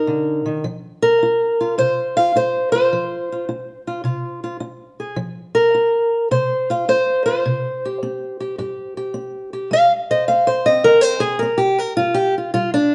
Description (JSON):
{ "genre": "acoustic country blues, solo or duo", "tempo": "106 BPM", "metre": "4/4", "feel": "swing 68% on 8ths", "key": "unclear", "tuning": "A4 = 436 Hz", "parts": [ { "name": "fingerpicked steel-string acoustic guitar", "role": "solo", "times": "0.0-12.9 s", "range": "G2 to F5", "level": "-19 LUFS", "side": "equal", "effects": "none" } ], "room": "wet stone room reverb, RT60 1.1 s", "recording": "band playing live in one room, nothing above 11.0 kHz", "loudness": "-19 LUFS", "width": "mono", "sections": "0.0-12.9 A section", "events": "steel-string acoustic guitar solo 0.0-12.9", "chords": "0.0 Cm9 (rootless); 0.7 F5; 7.4 C5; 9.7 Ab; 12.0 G7(no3)", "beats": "0.09 | 0.65 1.22 1.78 2.35 | 2.92 3.48 4.05 4.62 | 5.18 5.75 6.32 6.88 | 7.45 8.02 8.58 9.15 | 9.71 10.28 10.84 11.41 | 11.97 12.54" }